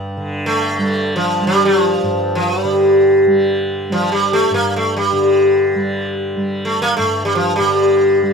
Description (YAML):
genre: indian classical, Hindustani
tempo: free time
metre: none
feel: none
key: unclear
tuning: A4 = 439 Hz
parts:
  - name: tanpura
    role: drone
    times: 0.0-8.3 s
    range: G2 to G3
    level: -21 LUFS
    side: right 1 dB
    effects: none
  - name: sitar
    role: melody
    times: 0.5-8.3 s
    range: F3 to Bb3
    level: -14 LUFS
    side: equal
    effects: none
room: light reverb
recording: minimal, uncompressed stereo recording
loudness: -13 LUFS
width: side -5 dB against mid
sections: 0.0-8.3 A section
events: none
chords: none